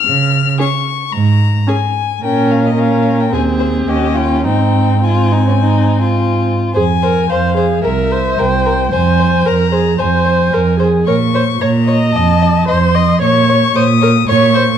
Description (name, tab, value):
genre	quick classical-period movement for string quartet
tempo	111 BPM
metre	4/4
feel	rubato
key	Ab major, F minor from 6.8 s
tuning	A4 = 438 Hz
part	rich violin	melody	0.0-14.8 s	C5 to F6	-18 LUFS	left 11 dB	none
part	rich cello	bass	0.1-14.7 s	C2 to Db3	-14 LUFS	right 3 dB	none
part	rich violin	second line	0.6-14.6 s	Db4 to Eb5	-20 LUFS	left 4 dB	none
part	rich viola	accompaniment	0.6-14.6 s	C4 to Eb5	-16 LUFS	right 1 dB	none
room	moderate recital hall reverb, RT60 1.6 s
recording	dark, warm production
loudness	-11 LUFS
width	side -9 dB against mid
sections	0.0-6.8 A section; 6.8-14.8 B section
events	none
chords	0.1 Db; 2.2 Bbm; 3.3 Ab/Eb; 3.9 Eb7; 4.5 Ab; 6.8 Fm; 7.8 C7; 8.9 Fm; 11.1 Bbm; 12.1 F7; 13.2 Bbm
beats	| 0.06 0.59 1.13 1.68 | 2.23 2.78 3.33 3.88 | 4.46 5.04 5.62 6.18 | 6.75 7.30 7.84 8.39 | 8.93 9.46 9.99 10.53 | 11.07 11.61 12.15 12.68 | 13.22 13.75 14.28